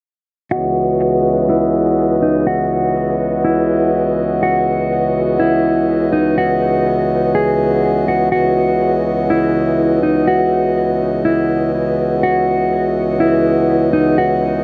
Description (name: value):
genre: hip hop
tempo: 123 BPM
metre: 4/4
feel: half-time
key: C# minor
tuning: A4 = 440 Hz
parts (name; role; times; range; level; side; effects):
- mellow electric guitar; melody; 0.5-14.6 s; D#4 to G#4; -19 LUFS; equal; low-pass filter, dub echo
- pedal harmonium; sustained chords; 0.5-14.6 s; C#2 to D#5; -18 LUFS; equal; low-pass filter
room: moderate echo chamber reverb, RT60 2.3 s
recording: echo-heavy mix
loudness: -15 LUFS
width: mono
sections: 0.5-8.3 A section; 8.3-14.6 B section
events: filter sweep 0.5-8.3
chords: 0.5 C#m11